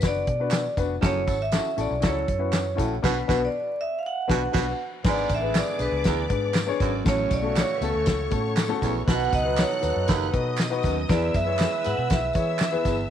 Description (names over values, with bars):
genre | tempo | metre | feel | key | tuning
uptempo 1960s-style soul | 119 BPM | 4/4 | straight | unclear | A4 = 440 Hz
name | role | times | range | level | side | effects
vibraphone with hard mallets | melody | 0.0-12.8 s | A4 to F#5 | -28 LUFS | right 2 dB | none
warm baby grand piano | accompaniment | 0.0-13.0 s | G#2 to C#5 | -29 LUFS | left 8 dB | none
vintage muted fingered electric bass | bass | 0.0-13.1 s | E#1 to E3 | -30 LUFS | equal | none
natural country drum kit | drums | 0.0-13.0 s | crash cymbal, hi-hat, kick drum, snare drum | -26 LUFS | equal | none
tambourine and handclaps | percussion | 0.0-13.0 s | none | -36 LUFS | right 6 dB | none
breathy baritone saxophone | riff | 1.0-13.0 s | D#2 to B2 | -30 LUFS | right 10 dB | none
mellow horn section | second line | 1.3-12.8 s | C#3 to B4 | -36 LUFS | right 8 dB | none
rich studio string section | second line | 5.0-13.1 s | C#5 to F#6 | -35 LUFS | left 3 dB | none
room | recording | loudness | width
light reverb | 1960s-style stereo with parts hard left and right, vinyl crackle | -22 LUFS | side -9 dB against mid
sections
0.0-5.0 A section; 5.0-13.1 B section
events
band accent 3.0-5.0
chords
0.0 Bm; 1.0 F#m7; 3.0 Bm; 5.0 G#dim; 7.1 F#m/A; 9.1 B; 11.1 E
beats
0.02 0.52 | 1.02 1.53 2.03 2.53 | 3.04 3.54 4.04 4.54 | 5.05 5.55 6.05 6.55 | 7.06 7.56 8.06 8.57 | 9.07 9.57 10.08 10.58 | 11.09 11.59 12.09 12.60